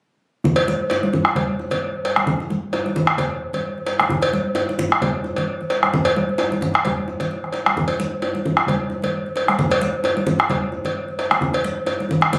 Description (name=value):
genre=west african traditional, West African drum ensemble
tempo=131 BPM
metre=4/4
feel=swing 55% on 16ths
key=none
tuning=none
part: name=bombo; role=percussion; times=0.4-12.4 s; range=none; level=-22 LUFS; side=equal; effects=none
part: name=djembe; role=percussion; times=0.4-12.4 s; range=none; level=-32 LUFS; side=equal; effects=none
part: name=congas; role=percussion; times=0.5-12.4 s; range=none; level=-27 LUFS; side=equal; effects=none
part: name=cowbell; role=percussion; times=0.6-12.4 s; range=none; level=-25 LUFS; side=equal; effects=none
room=moderate booth ambience, RT60 0.3 s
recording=recorded on a phone in the room, club reverb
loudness=-21 LUFS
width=mono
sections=0.4-12.4 A section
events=none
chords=none